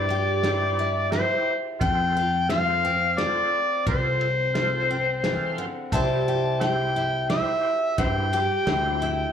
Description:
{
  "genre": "honky-tonk and classic country",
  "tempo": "88 BPM",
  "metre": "3/4",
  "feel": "straight",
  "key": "C major",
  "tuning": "A4 = 437 Hz",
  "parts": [
    { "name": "overdriven harmonica", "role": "melody", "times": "0.0-9.3 s", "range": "C5 to A5", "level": "-24 LUFS", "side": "left 2 dB", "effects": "slapback echo" },
    { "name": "overdriven tonewheel organ", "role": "accompaniment", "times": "0.0-9.1 s", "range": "E4 to F5", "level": "-33 LUFS", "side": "right 9 dB", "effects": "slow rotary speaker, chorus vibrato, slapback echo" },
    { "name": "picked steel-string acoustic guitar", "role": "accompaniment", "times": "0.0-9.3 s", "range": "C3 to C5", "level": "-29 LUFS", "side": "equal", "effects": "slapback echo" },
    { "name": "fingered electric bass", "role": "bass", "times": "0.0-9.3 s", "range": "C2 to G2", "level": "-28 LUFS", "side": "equal", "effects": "none" },
    { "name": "vintage drum kit", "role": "drums", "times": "0.1-8.8 s", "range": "kick drum, ride cymbal, snare drum", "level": "-32 LUFS", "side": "equal", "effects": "slapback echo" }
  ],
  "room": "moderate club reverb, RT60 0.9 s",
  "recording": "live gig heard through the venue's PA, club ambience",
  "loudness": "-21 LUFS",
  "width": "side -8 dB against mid",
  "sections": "0.0-9.3 A section",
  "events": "none",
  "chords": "0.0 C; 1.8 F; 5.9 C"
}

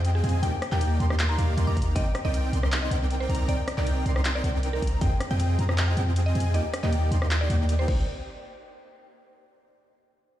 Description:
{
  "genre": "future bass",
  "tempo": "157 BPM",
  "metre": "4/4",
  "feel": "swing 53% on 16ths, half-time",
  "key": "C minor",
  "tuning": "A4 = 440 Hz",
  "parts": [
    { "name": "airy dreamy lead", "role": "arpeggios", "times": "0.0-8.0 s", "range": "F5 to C6", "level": "-38 LUFS", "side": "left 2 dB", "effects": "chorus, sidechain pumping" },
    { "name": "dense compressed supersaw", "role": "riff", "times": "0.0-8.0 s", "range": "Bb3 to C6", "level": "-32 LUFS", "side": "right 1 dB", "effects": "sidechain pumping" },
    { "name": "warm 808-style bass", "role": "bass", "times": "0.0-8.1 s", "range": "C2 to F2", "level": "-24 LUFS", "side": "equal", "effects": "sidechain pumping" },
    { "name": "big-room dance drum kit", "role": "drums", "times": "0.0-8.0 s", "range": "crash cymbal, handclaps, hi-hat, rim click", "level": "-33 LUFS", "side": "equal", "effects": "none" },
    { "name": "mallet-like synth pluck", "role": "melody", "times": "0.1-8.0 s", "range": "Ab4 to D6", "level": "-35 LUFS", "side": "equal", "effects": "chorus, sidechain pumping, tape echo" },
    { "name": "electronic kick drum", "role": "drums", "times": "1.8-2.0, 4.8-5.1, 7.9-8.0 s", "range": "none", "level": "-26 LUFS", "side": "equal", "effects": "none" }
  ],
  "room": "little or no reverb",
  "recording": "played on a big sound system in a bare room, stone room reverb",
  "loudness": "-23 LUFS",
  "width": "side -13 dB against mid",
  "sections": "0.0-8.1 A section; 8.1-9.6 B section",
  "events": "drop 0.0-8.1",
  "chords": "0.4 Ebmaj7; 2.0 Cm9; 5.0 Fm9; 6.5 Ebmaj7; 7.9 Cm9; 8.1 N.C."
}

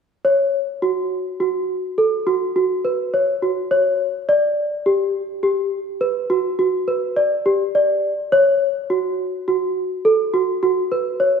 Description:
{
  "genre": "contemporary instrumental, contemporary",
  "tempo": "104 BPM",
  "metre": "7/4",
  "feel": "straight",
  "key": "F# phrygian",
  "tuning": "A4 = 440 Hz",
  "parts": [
    { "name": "small celesta", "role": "solo", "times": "0.2-11.4 s", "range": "F#4 to D5", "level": "-17 LUFS", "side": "equal", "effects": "none" }
  ],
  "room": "wet scoring stage reverb, RT60 1.8 s",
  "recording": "none",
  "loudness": "-17 LUFS",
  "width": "side -6 dB against mid",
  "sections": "0.2-11.4 A section",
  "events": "none",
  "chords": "none"
}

